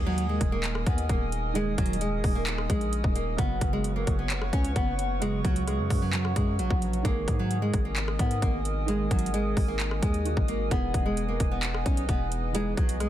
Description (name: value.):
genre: hip hop, trap.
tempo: 131 BPM.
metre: 4/4.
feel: half-time.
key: G# minor.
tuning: A4 = 438 Hz.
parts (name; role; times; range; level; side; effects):
nylon-string guitar; melody; 0.0-13.1 s; F#3 to C#4; -31 LUFS; equal; tape echo.
felt-muted upright piano; accompaniment; 0.0-13.1 s; C#3 to G#4; -37 LUFS; right 8 dB; none.
warbly tape-like pad; sustained chords; 0.0-13.1 s; A#4 to D#6; -36 LUFS; equal; chorus, built-in reverb.
distorted 808-style bass; bass; 0.0-13.1 s; D#1 to G#2; -30 LUFS; equal; distortion.
trap drum kit; drums; 0.2-13.1 s; handclaps, hi-hat, kick drum, rim click; -28 LUFS; equal; overdrive.
room: little or no reverb.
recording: dense, heavily limited modern master.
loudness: -25 LUFS.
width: side -12 dB against mid.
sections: 0.0-13.1 A section.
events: none.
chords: 0.0 D#sus4; 3.4 F#sus4; 7.0 G#sus2; 10.7 Emaj7.